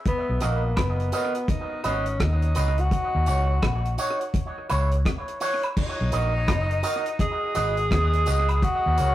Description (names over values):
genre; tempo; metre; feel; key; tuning
roots reggae; 84 BPM; 4/4; swing 63% on 16ths; B major; A4 = 440 Hz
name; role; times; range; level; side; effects
breathy tenor saxophone; melody; 0.1-9.1 s; A#3 to G#4; -27 LUFS; left 1 dB; analog delay
deep reggae drum kit; drums; 0.1-9.1 s; crash cymbal, hi-hat, kick drum, rim click; -27 LUFS; equal; none
vintage muted fingered electric bass; bass; 0.3-9.1 s; F#1 to D#2; -24 LUFS; equal; none
electric guitar with an envelope filter; accompaniment; 0.4-9.1 s; D#4 to D#5; -29 LUFS; right 3 dB; analog delay
tambourine and woodblock; percussion; 0.4-9.1 s; none; -35 LUFS; right 1 dB; none
room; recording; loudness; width
moderate studio reverb, RT60 0.6 s; rough rehearsal-room recording, warm saturation; -22 LUFS; side -14 dB against mid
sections
0.0-5.8 A section; 5.8-9.1 B section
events
none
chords
0.1 Bmaj7; 1.5 G#m7; 2.9 D#m7; 4.3 C#m7; 5.8 Bmaj7 (rootless); 7.2 G#m7; 8.6 D#m7